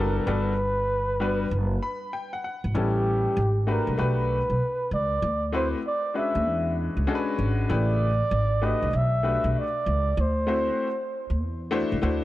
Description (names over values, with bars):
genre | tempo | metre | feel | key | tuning
hip hop, jazz-hop | 97 BPM | 4/4 | swing 64% on 16ths | G major | A4 = 442 Hz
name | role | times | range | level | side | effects
breathy flugelhorn | melody | 0.0-11.4 s | G4 to E5 | -27 LUFS | right 1 dB | none
bright upright piano | accompaniment | 0.0-12.2 s | C#3 to B5 | -29 LUFS | left 3 dB | none
upright bass | bass | 0.0-12.2 s | F#1 to E2 | -26 LUFS | equal | none
room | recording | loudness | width
light reverb | dark, warm production | -23 LUFS | side -15 dB against mid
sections
0.0-2.7 A section; 2.7-12.2 B section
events
upright piano fill 1.5-2.7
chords
0.3 Gmaj7; 2.7 A9; 3.4 Abmaj7; 4.0 Gmaj7/B; 5.2 D13; 6.5 E13; 7.7 A9; 8.3 Abmaj7; 8.9 Gmaj7/B; 10.2 D9; 11.4 Esus2